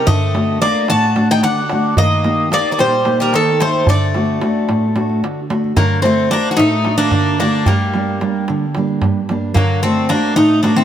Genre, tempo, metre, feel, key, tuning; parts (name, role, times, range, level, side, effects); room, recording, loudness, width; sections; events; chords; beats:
greek folk, Greek bouzouki band; 222 BPM (eighths); 7/8; straight; D phrygian dominant; A4 = 440 Hz
Greek bouzouki; melody; 0.0-10.8 s; Bb3 to A5; -16 LUFS; equal
Greek bouzouki; second line; 0.0-10.8 s; Eb3 to F#4; -23 LUFS; left 4 dB
fingerpicked steel-string acoustic guitar; accompaniment; 0.0-10.8 s; G2 to A4; -18 LUFS; right 1 dB
darbuka; percussion; 0.1-10.8 s; -18 LUFS; right 1 dB
light reverb; -13 LUFS; side -10 dB against mid
0.0-5.8 A section; 5.8-10.8 B section
0.1 D; 2.0 Eb; 3.9 D; 7.7 Gm; 9.6 D
| 0.07 0.34 0.61 0.89 1.16 1.43 1.70 | 1.97 2.25 2.52 2.79 3.06 3.33 3.60 | 3.87 4.14 4.42 4.69 4.96 5.23 5.50 | 5.77 6.04 6.31 6.58 6.85 7.12 7.39 | 7.66 7.93 8.20 8.47 8.74 9.01 9.28 | 9.55 9.82 10.09 10.36 10.63